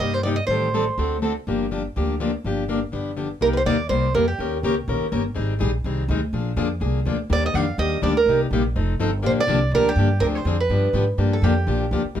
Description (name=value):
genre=acoustic string swing (jazz manouche)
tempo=247 BPM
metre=4/4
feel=swing 55% on 8ths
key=G minor, C minor from 3.4 s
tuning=A4 = 440 Hz
part: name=picked old ladder-braced acoustic guitar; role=melody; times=0.0-1.2, 3.4-4.5, 7.3-11.8 s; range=G4 to F5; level=-22 LUFS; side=right 3 dB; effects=none
part: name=picked plugged-in steel-string acoustic guitar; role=accompaniment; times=0.0-12.2 s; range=C3 to Bb4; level=-24 LUFS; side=left 3 dB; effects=none
part: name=upright bass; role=bass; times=0.0-12.2 s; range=F1 to Ab2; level=-24 LUFS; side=equal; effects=none
room=light reverb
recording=minimal, uncompressed stereo recording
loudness=-19 LUFS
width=side -10 dB against mid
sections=0.0-3.4 A section; 3.4-11.2 B section; 11.2-12.2 C section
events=steel-string acoustic guitar solo 11.2-12.2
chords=0.5 Am7b5; 1.0 D7; 1.5 Gm7; 2.9 G7; 3.4 Cm7; 4.4 Eb7; 5.4 Abmaj7; 6.3 Bb7; 7.3 Ebmaj7; 8.3 Cm7; 8.8 F7; 9.2 Bb6; 10.2 Dm7b5; 10.7 G7; 11.2 Gm7